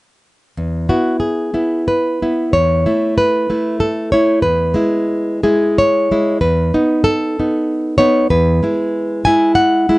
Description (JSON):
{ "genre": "romantic piece for solo classical guitar", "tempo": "93 BPM", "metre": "3/4", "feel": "uneven beats, rubato", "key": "E major", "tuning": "A4 = 440 Hz", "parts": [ { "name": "nylon-string guitar", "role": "solo", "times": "0.6-10.0 s", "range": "E2 to G#5", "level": "-13 LUFS", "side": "equal", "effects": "none" } ], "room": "light reverb", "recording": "dark, warm production, nothing above 10.7 kHz", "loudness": "-13 LUFS", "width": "side -20 dB against mid", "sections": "0.6-10.0 A section", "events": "none", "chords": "0.6 E; 2.5 A/E; 4.4 E; 6.4 B7/E; 8.3 E" }